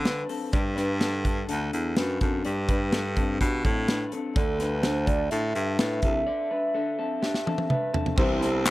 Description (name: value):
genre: jangly indie pop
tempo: 126 BPM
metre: 4/4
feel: straight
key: G major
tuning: A4 = 440 Hz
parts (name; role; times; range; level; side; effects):
- hollow clarinet-like synth lead; melody; 0.0-0.3, 4.4-8.7 s; A4 to E5; -29 LUFS; right 1 dB; chorus
- electric guitar through a small old amp; arpeggios; 0.0-8.7 s; C4 to D5; -30 LUFS; left 3 dB; spring reverb, tape echo
- bright baritone saxophone; bass; 0.0-8.7 s; C2 to D3; -28 LUFS; equal; none
- modern studio drum kit; drums; 0.1-8.7 s; crash cymbal, hi-hat, kick drum, snare drum, toms; -26 LUFS; equal; none
- clear trumpet; second line; 8.2-8.7 s; C4; -37 LUFS; right 6 dB; none
- overdriven combo organ; accompaniment; 8.2-8.7 s; G3 to G4; -36 LUFS; left 3 dB; none
- picked steel-string acoustic guitar; accompaniment; 8.2-8.7 s; C3 to E4; -32 LUFS; right 4 dB; none
- group handclap; percussion; 8.7 s; none; -21 LUFS; left 3 dB; none
room: light reverb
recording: dry, close 1970s-style studio recording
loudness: -24 LUFS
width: side -17 dB against mid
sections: 0.0-8.2 A section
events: drum fill 7.2-8.2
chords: 0.0 Csus2; 0.5 Gsus2; 4.4 Dsus2; 8.2 Cmaj7